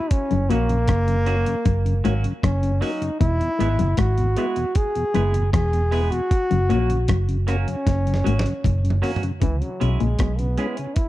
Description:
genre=roots reggae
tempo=77 BPM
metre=4/4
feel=straight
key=unclear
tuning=A4 = 440 Hz
part: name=clear trombone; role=melody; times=0.0-11.1 s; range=E3 to G#4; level=-25 LUFS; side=equal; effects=tape echo
part: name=dusty soul sampler-style drum kit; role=drums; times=0.1-11.1 s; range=hi-hat, kick drum, rim click, snare drum, toms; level=-23 LUFS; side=right 1 dB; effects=none
part: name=mellow tonewheel organ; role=accompaniment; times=0.3-10.9 s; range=E2 to F#4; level=-30 LUFS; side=left 2 dB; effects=overdrive, chorus vibrato, slow rotary speaker
part: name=semi-hollow electric guitar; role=riff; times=0.3-10.4 s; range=E2 to C#3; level=-26 LUFS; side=left 7 dB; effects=none
part: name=vintage muted fingered electric bass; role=bass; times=0.3-10.6 s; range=E1 to C#2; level=-21 LUFS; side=equal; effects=none
part: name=semi-hollow electric guitar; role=accompaniment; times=0.5-10.8 s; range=F#3 to G#4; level=-33 LUFS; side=right 4 dB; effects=wide subtle chorus, tape echo
room=little or no reverb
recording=dry, close 1970s-style studio recording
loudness=-19 LUFS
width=side -15 dB against mid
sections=0.0-9.4 A section; 9.4-11.1 B section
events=drum fill 7.9-9.4; trombone solo 9.4-11.1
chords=0.1 F#; 3.2 E; 6.3 F#; 9.4 C#m

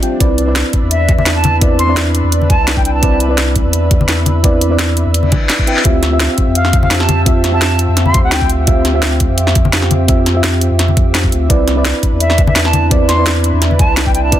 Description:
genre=liquid drum and bass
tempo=170 BPM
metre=4/4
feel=straight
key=unclear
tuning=A4 = 440 Hz
part: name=mellow FM electric piano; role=accompaniment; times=0.0-14.4 s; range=C4 to G5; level=-18 LUFS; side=right 2 dB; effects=chorus, low-pass filter, tape echo
part: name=lush unison pad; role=sustained chords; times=0.0-14.4 s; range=F3 to E5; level=-22 LUFS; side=equal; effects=chorus, sidechain pumping
part: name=drum and bass drum kit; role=drums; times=0.0-14.4 s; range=handclaps, hi-hat, snare drum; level=-17 LUFS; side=equal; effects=overdrive
part: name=warm sub bass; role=bass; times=0.2-14.4 s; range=G1 to F2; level=-15 LUFS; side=equal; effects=none
part: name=electronic kick drum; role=drums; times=0.2-14.4 s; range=none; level=-14 LUFS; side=equal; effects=overdrive
part: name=reedy silver concert flute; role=melody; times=0.9-3.2, 6.6-8.5, 12.2-14.4 s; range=E5 to C6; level=-18 LUFS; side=equal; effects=ping-pong delay
part: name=congas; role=percussion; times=1.2-13.8 s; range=none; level=-18 LUFS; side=left 4 dB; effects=none
part: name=reverse cymbal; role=sound effects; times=5.3-5.9 s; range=none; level=-22 LUFS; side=left 5 dB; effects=none
room=light reverb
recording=dense, heavily limited modern master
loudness=-10 LUFS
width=side -12 dB against mid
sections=0.0-14.4 A section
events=reverse cymbal 5.3-5.9; drum fill 5.5-5.9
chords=0.2 Cmaj9; 5.9 Dm11; 11.5 Cmaj9

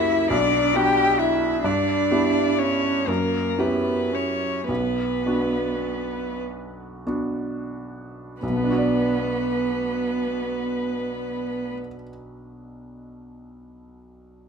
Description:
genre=classical, slow romantic movement for piano trio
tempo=29-46 BPM (dotted quarters)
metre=6/8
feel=rubato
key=B minor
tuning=A4 = 440 Hz
part: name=warm violin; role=melody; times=0.0-11.7 s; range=A#4 to G5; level=-26 LUFS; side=left 8 dB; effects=none
part: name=rich cello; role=second line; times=0.0-11.7 s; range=A#3 to G4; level=-25 LUFS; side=right 7 dB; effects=none
part: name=clear grand piano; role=accompaniment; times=0.0-14.5 s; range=B1 to D5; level=-26 LUFS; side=right 1 dB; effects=none
room=moderate recital hall reverb, RT60 1.5 s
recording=minimal, uncompressed stereo recording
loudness=-21 LUFS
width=side -6 dB against mid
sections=0.0-8.4 A section; 8.4-12.3 B section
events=slowing down 0.3-8.4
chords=0.3 Bm; 1.6 Em/G; 3.1 F#5; 4.7 Bm

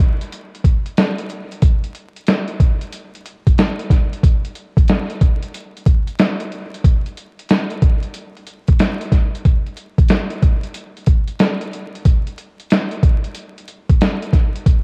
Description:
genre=hip hop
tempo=92 BPM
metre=4/4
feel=swing 66% on 16ths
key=none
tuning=none
part: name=boom bap sampler-style drum kit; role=drums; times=0.0-14.8 s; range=hi-hat, kick drum, snare drum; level=-17 LUFS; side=equal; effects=vintage 12-bit sampler grit, cassette tape
room=moderate spring reverb, RT60 2.5 s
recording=home recording on cassette, vinyl crackle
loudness=-17 LUFS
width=mono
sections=0.0-14.8 A section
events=none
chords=none

